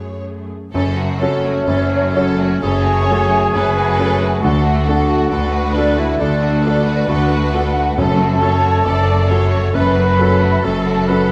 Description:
cinematic, emotional film score for orchestra; 67 BPM; 4/4; rubato; F# minor; A4 = 440 Hz
rich studio violin section; second line; 0.0-11.3 s; A3 to C#5; -28 LUFS; equal
clear concert grand piano; accompaniment; 0.0-11.3 s; F#1 to A4; -23 LUFS; equal
clear studio viola section; accompaniment; 0.0-11.3 s; A3 to D5; -28 LUFS; equal
rich studio cello section; bass; 0.0-11.3 s; D2 to F#2; -23 LUFS; equal
rich studio violin section; melody; 0.7-11.3 s; F#4 to A4; -31 LUFS; equal
clear studio double bass section; bass; 0.7-11.3 s; F#1 to D2; -24 LUFS; equal
clear clarinet; second line; 1.2-11.3 s; C#4 to B4; -24 LUFS; equal
mellow large flute ensemble; second line; 1.2-11.3 s; C#5 to B5; -23 LUFS; equal
timpani; percussion; 8.0-9.3 s; F#2; -27 LUFS; equal
moderate scoring stage reverb, RT60 1.9 s; -16 LUFS; mono
0.7-11.3 A section
0.0 F#madd9; 0.7 F#m; 4.4 D; 8.0 F#m
| 0.73 1.67 2.62 3.53 | 4.42 5.31 6.20 7.09 | 7.98 8.85 9.74 10.64

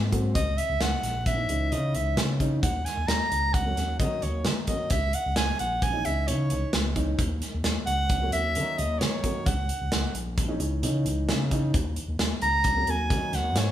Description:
progressive instrumental, band music in an uneven meter; 132 BPM; 5/4; straight; C# dorian; A4 = 440 Hz
overdriven fingered electric bass; bass; 0.0-13.7 s; A#1 to D#3; -28 LUFS; equal
dark baby grand piano; accompaniment; 0.1-13.7 s; E3 to D#4; -33 LUFS; equal
modern studio drum kit; drums; 0.1-13.7 s; hi-hat, kick drum, snare drum; -28 LUFS; equal
breathy soprano saxophone; melody; 0.3-13.7 s; C#5 to A#5; -28 LUFS; right 1 dB
moderate large studio reverb, RT60 1.1 s; band playing live in one room; -24 LUFS; side -11 dB against mid
0.0-13.7 A section
soprano saxophone solo 0.0-13.7
0.4 C#madd9; 2.6 D#m7; 4.9 C#madd9; 7.2 D#m7; 9.5 C#madd9; 11.7 D#m7
| 0.36 0.81 1.27 1.72 2.18 | 2.63 3.09 3.54 4.00 4.46 | 4.91 5.37 5.82 6.28 6.74 | 7.19 7.65 8.10 8.56 9.01 | 9.47 9.92 10.38 10.83 11.29 | 11.74 12.20 12.65 13.11 13.56

